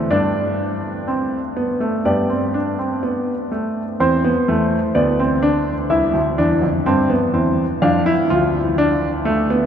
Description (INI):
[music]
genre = classical, baroque-style 4-part fugue for grand piano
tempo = 62 BPM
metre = 4/4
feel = straight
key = C major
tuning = A4 = 442 Hz
[part]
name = clear concert grand piano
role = solo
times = 0.0-9.7 s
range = C2 to F5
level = -16 LUFS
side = equal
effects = none
[sound]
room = wet cathedral reverb, RT60 6.2 s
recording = in a vast, echoing space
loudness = -16 LUFS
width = side -8 dB against mid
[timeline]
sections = 0.0-4.0 A section; 4.0-9.7 B section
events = none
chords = 0.1 Gsus4; 4.0 C/E; 5.9 C; 7.8 Dm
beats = | 0.10 1.07 2.06 3.04 | 4.01 4.96 5.91 6.86 | 7.82 8.78